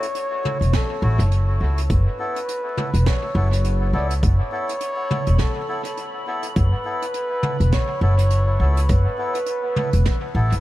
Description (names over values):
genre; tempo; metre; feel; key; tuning
ambient dub; 103 BPM; 4/4; swing 58% on 16ths; F# minor; A4 = 439 Hz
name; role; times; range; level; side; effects
trumpet with bucket mute; melody; 0.0-10.6 s; A4 to D5; -27 LUFS; equal; dub echo
granular cloud pad; sustained chords; 0.0-10.6 s; C#5 to B5; -38 LUFS; left 2 dB; built-in reverb
melodica; stabs; 0.0-10.6 s; A3 to A4; -30 LUFS; left 2 dB; dub echo
jazz brush drum kit; drums; 0.0-10.6 s; hi-hat, snare drum, toms; -29 LUFS; right 2 dB; dub echo
upright bass; bass; 0.6-10.6 s; E1 to C#2; -18 LUFS; equal; none
electronic kick drum; drums; 0.7-10.2 s; none; -22 LUFS; equal; none
room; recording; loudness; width
small room reverb; vinyl crackle; -18 LUFS; side -16 dB against mid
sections
0.0-10.6 A section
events
none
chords
0.0 F#m7